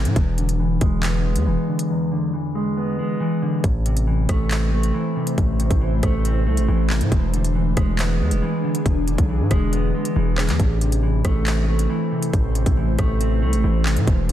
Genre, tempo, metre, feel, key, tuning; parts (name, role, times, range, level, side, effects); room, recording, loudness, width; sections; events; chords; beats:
hip hop, drill; 138 BPM; 4/4; half-time; A harmonic minor; A4 = 439 Hz
mellow electric guitar; accompaniment; 0.0-14.3 s; E2 to C4; -23 LUFS; equal; low-pass filter
distorted 808-style bass; bass; 0.0-14.3 s; E1 to A2; -20 LUFS; equal; distortion
drill drum kit; drums; 0.1-14.3 s; handclaps, hi-hat, kick drum, rim click; -22 LUFS; equal
ethereal airy pad; sustained chords; 4.7-14.3 s; E3 to C5; -28 LUFS; equal; ensemble chorus, built-in reverb, phaser
light reverb; dense, heavily limited modern master; -18 LUFS; side -12 dB against mid
0.0-14.3 A section
filter sweep on clean electric guitar 0.0-3.6; break 1.9-3.6
0.2 E7; 3.6 Am; 7.1 E7; 10.6 Am
| 0.16 0.60 1.03 1.47 | 1.90 2.33 2.77 3.20 | 3.64 4.07 4.51 4.94 | 5.38 5.81 6.25 6.68 | 7.12 7.55 7.99 8.42 | 8.86 9.29 9.73 10.16 | 10.60 11.03 11.46 11.90 | 12.34 12.77 13.20 13.64 | 14.07